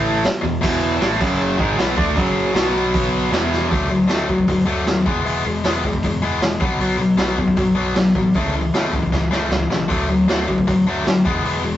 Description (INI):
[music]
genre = punk rock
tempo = 155 BPM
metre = 4/4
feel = straight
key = E major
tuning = A4 = 441 Hz
[part]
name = distorted electric guitar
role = riff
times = 0.0-3.7 s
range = E2 to D4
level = -24 LUFS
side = right 5 dB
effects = distortion
[part]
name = high-gain distorted guitar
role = riff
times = 0.0-3.7 s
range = E2 to D4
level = -26 LUFS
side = right 2 dB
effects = distortion
[part]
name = tight distorted guitar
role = riff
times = 0.0-11.8 s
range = E2 to D4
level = -18 LUFS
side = left 2 dB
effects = distortion
[part]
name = overdriven picked electric bass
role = bass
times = 0.0-11.8 s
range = E1 to D#2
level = -27 LUFS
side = right 1 dB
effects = none
[part]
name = raw garage drum kit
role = drums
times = 0.2-11.5 s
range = crash cymbal, hi-hat, kick drum, snare drum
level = -22 LUFS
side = right 1 dB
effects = none
[sound]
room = moderate small room reverb, RT60 0.6 s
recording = rough rehearsal-room recording, nothing above 7.9 kHz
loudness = -16 LUFS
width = side -12 dB against mid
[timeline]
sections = 0.0-3.7 A section; 3.7-11.8 B section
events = drum fill 3.5, 9.1-9.9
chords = 0.2 E5; 1.2 F#5; 1.6 G#m7b5; 2.2 F#5; 2.5 B5; 3.3 E5; 3.7 D; 5.1 E; 6.6 B5; 8.3 A/C#; 9.9 D; 11.2 E